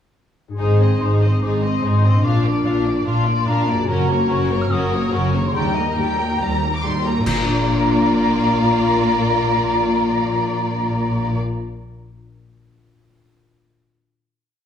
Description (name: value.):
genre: cinematic, heroic adventure film score.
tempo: 144 BPM.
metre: 4/4.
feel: straight.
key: Bb mixolydian.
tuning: A4 = 439 Hz.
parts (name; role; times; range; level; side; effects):
concert harp; arpeggios; 0.5-12.0 s; Gb2 to F5; -26 LUFS; left 5 dB; none.
warm symphonic violin section; melody; 0.6-11.4 s; Bb4 to D6; -28 LUFS; left 1 dB; none.
mellow concert flute; second line; 0.6-11.4 s; Ab5 to F6; -23 LUFS; left 1 dB; none.
warm symphonic violin section; second line; 0.6-11.4 s; D4 to C5; -26 LUFS; left 3 dB; none.
rich symphonic viola section; accompaniment; 0.6-11.4 s; G3 to Eb4; -24 LUFS; equal; none.
warm symphonic cello section; bass; 0.6-11.4 s; Eb2 to Bb2; -23 LUFS; equal; none.
warm symphonic double bass section; bass; 0.6-11.4 s; Gb1 to Eb2; -23 LUFS; right 1 dB; none.
cymbal swell, clash cymbals and concert bass drum; percussion; 3.9-8.1 s; none; -29 LUFS; equal; none.
room: wet recital hall reverb, RT60 1.4 s.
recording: small room ambience.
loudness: -16 LUFS.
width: side -8 dB against mid.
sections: 0.6-7.3 theme; 7.3-10.6 final chord.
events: band accent 7.3-7.7.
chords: 0.6 Ab; 2.3 Bb; 3.9 Gb; 5.6 Eb; 7.3 Bb.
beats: | 0.58 1.00 1.42 1.84 | 2.25 2.66 3.07 3.48 | 3.89 4.30 4.71 5.13 | 5.56 5.99 6.41 6.84 | 7.27 7.68 8.10 8.52 | 8.93 9.35 9.77 10.18.